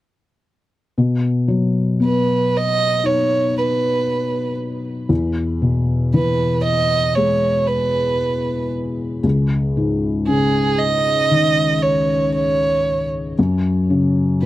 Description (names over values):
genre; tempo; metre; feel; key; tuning
pop; 58 BPM; 4/4; straight; B major; A4 = 440 Hz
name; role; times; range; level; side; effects
felt-muted upright piano; accompaniment; 1.0-14.5 s; C#2 to D#4; -18 LUFS; left 2 dB; none
dark violin; melody; 2.0-14.5 s; G#4 to D#5; -18 LUFS; right 3 dB; none
room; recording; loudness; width
light reverb; dry, close 1970s-style studio recording; -16 LUFS; side -15 dB against mid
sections
1.0-14.5 A section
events
none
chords
1.0 B; 5.1 E; 9.2 C#sus2; 13.4 F#5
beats
| 0.97 2.00 3.04 4.07 | 5.11 6.14 7.17 8.21 | 9.24 10.28 11.31 12.35 | 13.38 14.41